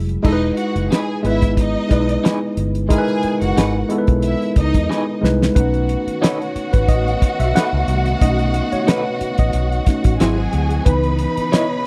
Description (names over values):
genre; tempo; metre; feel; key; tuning
lush 1970s-style soul; 90 BPM; 4/4; swing 54% on 16ths; unclear; A4 = 439 Hz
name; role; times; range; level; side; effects
mellow tine electric piano; accompaniment; 0.0-11.9 s; E3 to F#5; -22 LUFS; equal; none
vintage muted fingered electric bass; bass; 0.0-11.4 s; E1 to E2; -22 LUFS; equal; none
damped 70s drum kit; drums; 0.1-11.7 s; crash cymbal, hi-hat, kick drum, snare drum; -19 LUFS; equal; none
warm studio string section; second line; 0.2-11.9 s; D#4 to B5; -28 LUFS; equal; none
electric guitar through a small old amp; riff; 0.9-11.7 s; D#4 to D#5; -25 LUFS; equal; tremolo
warm studio string section; sustained chords; 5.6-11.9 s; C#3 to F#4; -30 LUFS; equal; none
room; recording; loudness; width
studio reverb; dry, close 1970s-style studio recording; -18 LUFS; mono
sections
0.2-5.6 A section; 5.6-11.9 B section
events
drum fill 4.9-5.6; tine electric piano solo 5.6-11.9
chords
0.2 Emaj7; 5.6 B7; 10.2 G#7b13; 10.9 C#m9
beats
| 0.25 0.91 1.58 2.24 | 2.91 3.57 4.24 4.90 | 5.56 6.22 6.89 7.55 | 8.21 8.88 9.54 10.20 | 10.86 11.53